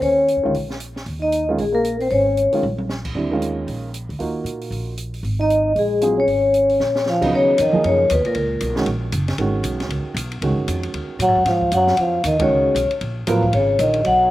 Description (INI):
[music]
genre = modal jazz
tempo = 231 BPM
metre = 4/4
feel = swing 60% on 8ths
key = Eb dorian, G# dorian from 7.3 s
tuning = A4 = 438 Hz
[part]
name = vibraphone with medium mallets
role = melody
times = 0.0-2.6, 5.4-8.7, 11.2-14.3 s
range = Ab4 to F#5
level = -18 LUFS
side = left 2 dB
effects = slapback echo
[part]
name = breathy trombone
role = second line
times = 0.0-2.6, 5.4-8.7, 11.2-14.3 s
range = A#2 to Eb4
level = -23 LUFS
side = right 3 dB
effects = slapback echo
[part]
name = upright bass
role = bass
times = 0.0-14.3 s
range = F#1 to Bb2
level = -25 LUFS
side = equal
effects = none
[part]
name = open jazz drum kit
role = drums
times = 0.0-14.1 s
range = crash cymbal, hi-hat, kick drum, ride cymbal, snare drum, toms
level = -31 LUFS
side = equal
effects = none
[part]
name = warm baby grand piano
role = accompaniment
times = 0.4-13.4 s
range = Db3 to A#4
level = -23 LUFS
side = right 3 dB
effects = slapback echo
[sound]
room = little or no reverb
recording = recorded outdoors, with no room sound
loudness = -17 LUFS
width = side -15 dB against mid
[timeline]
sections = 0.0-7.3 A section; 7.3-14.3 B section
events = drum fill 2.6, 6.8; band accent 12.4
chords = 0.0 Eb9sus4; 7.3 G#9sus4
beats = | 0.02 0.28 0.54 0.80 | 1.06 1.32 1.59 1.85 | 2.11 2.37 2.63 2.89 | 3.15 3.41 3.67 3.93 | 4.20 4.46 4.72 4.98 | 5.24 5.50 5.76 6.02 | 6.28 6.54 6.80 7.06 | 7.32 7.58 7.83 8.09 | 8.35 8.61 8.87 9.13 | 9.39 9.65 9.91 10.17 | 10.43 10.69 10.94 11.20 | 11.46 11.72 11.98 12.24 | 12.50 12.76 13.02 13.27 | 13.53 13.79 14.05